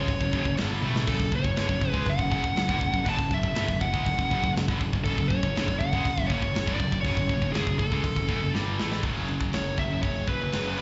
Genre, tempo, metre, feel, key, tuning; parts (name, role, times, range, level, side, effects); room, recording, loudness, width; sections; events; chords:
heavy metal; 121 BPM; 4/4; straight; F# minor; A4 = 440 Hz
high-gain lead guitar; melody; 0.0-10.8 s; G#4 to A5; -33 LUFS; equal; distortion, slapback echo, delay
distorted electric guitar; riff; 0.0-10.8 s; F#2 to A3; -40 LUFS; equal
heavy high-gain guitar; riff; 0.0-10.8 s; F#2 to A3; -40 LUFS; equal
high-gain distorted guitar; riff; 0.0-10.8 s; F#2 to A3; -34 LUFS; equal; distortion
fuzz picked electric bass; bass; 0.0-10.8 s; F#1 to C#2; -33 LUFS; equal; overdrive
tight metal drum kit; drums; 0.1-10.8 s; crash cymbal, hi-hat, kick drum, snare drum, splash cymbal, toms; -32 LUFS; equal
studio ambience; live gig heard through the venue's PA, club reverb, nothing above 7.8 kHz; -27 LUFS; mono
0.0-9.0 A section; 9.0-10.8 B section
drum fill 0.8, 8.5-9.0; lead electric guitar solo 9.0-10.8
0.0 F#m; 9.0 F#5